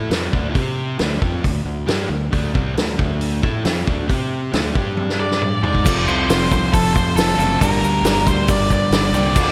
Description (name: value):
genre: classic rock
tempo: 136 BPM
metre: 4/4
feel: straight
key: D minor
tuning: A4 = 440 Hz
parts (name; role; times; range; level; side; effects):
- crunchy overdriven guitar; riff; 0.0-9.5 s; F2 to C5; -26 LUFS; equal; slapback echo
- fuzz fingered electric bass; bass; 0.0-9.5 s; F1 to C3; -26 LUFS; equal; overdrive
- vintage drum kit; drums; 0.1-9.5 s; crash cymbal, hi-hat, kick drum, snare drum, toms; -22 LUFS; equal; none
- octave-fuzz lead guitar; melody; 5.2-9.5 s; A4 to D5; -23 LUFS; equal; distortion, slapback echo
- mellow reed electric piano; accompaniment; 5.8-9.5 s; D4 to F5; -30 LUFS; equal; tremolo, slapback echo
- overdriven semi-hollow guitar; riff; 5.8-9.5 s; F2 to G4; -26 LUFS; equal; none
- egg shaker; percussion; 5.9-9.5 s; none; -39 LUFS; equal; none
room: light reverb, studio reverb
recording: none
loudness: -18 LUFS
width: mono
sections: 0.0-5.9 A section; 5.9-9.5 B section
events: drum fill 5.0-5.9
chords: 0.0 Dm; 0.6 C5; 1.0 Dm; 4.1 C5; 4.5 D5; 4.8 G5; 5.6 G#5; 5.9 F; 7.6 Gm